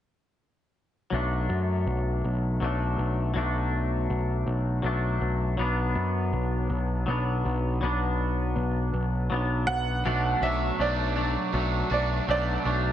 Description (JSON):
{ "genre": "rock", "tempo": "54 BPM (dotted quarters)", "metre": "6/8", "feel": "straight", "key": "unclear", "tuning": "A4 = 438 Hz", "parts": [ { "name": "twangy electric guitar", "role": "riff", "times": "1.1-12.9 s", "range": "F#3 to D4", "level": "-29 LUFS", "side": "left 4 dB", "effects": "analog chorus" }, { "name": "growling picked electric bass", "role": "bass", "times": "1.1-12.9 s", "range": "B1 to F#2", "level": "-27 LUFS", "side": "equal", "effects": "overdrive" }, { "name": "bright upright piano", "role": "melody", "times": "9.7-12.9 s", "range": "D5 to F#5", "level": "-29 LUFS", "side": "right 3 dB", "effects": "analog delay" }, { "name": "crunchy overdriven guitar", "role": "riff", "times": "10.1-12.9 s", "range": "B2 to F#4", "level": "-32 LUFS", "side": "right 10 dB", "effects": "wide subtle chorus, analog delay" } ], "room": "light reverb, digital ambience", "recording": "nothing above 10.6 kHz", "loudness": "-24 LUFS", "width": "side -11 dB against mid", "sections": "1.1-10.1 A section; 10.1-12.9 B section", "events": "none", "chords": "1.1 Bm7; 5.6 Bm; 10.1 Bm7" }